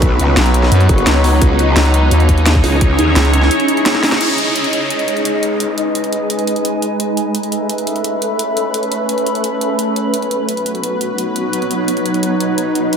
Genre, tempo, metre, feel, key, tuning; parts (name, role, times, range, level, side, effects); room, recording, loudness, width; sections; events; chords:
dark technical drum and bass; 172 BPM; 4/4; straight; A4 = 440 Hz
swarming drone; sustained chords; 0.0-13.0 s; E3 to C#5; -17 LUFS; equal; built-in reverb, phaser, sidechain pumping
growl bass; bass; 0.0-3.1 s; F#1 to D#2; -14 LUFS; equal; chorus, overdrive
drum and bass drum kit; drums; 0.0-13.0 s; crash cymbal, hi-hat, snare drum; -19 LUFS; equal; overdrive
electronic kick drum; drums; 0.0-2.9 s; -14 LUFS; equal
granular cloud pad; texture; 0.0-13.0 s; B3 to B5; -20 LUFS; equal; built-in reverb, sidechain pumping
growling FM bass; bass; 0.4-3.5 s; B1 to F#2; -12 LUFS; equal
downlifter; sound effects; 4.2-7.0 s; -22 LUFS; equal
wet lush hall reverb, RT60 1.7 s; dreamy mix soaked in reverb; -13 LUFS; side -7 dB against mid
0.0-4.2 A section; 4.2-13.0 B section
drop 0.0-4.2; drum fill 3.9; band accent 4.1; filter sweep on synth drone 4.2-13.0
0.0 B; 1.4 C#madd9; 4.2 G#m; 7.0 Aadd9; 9.8 B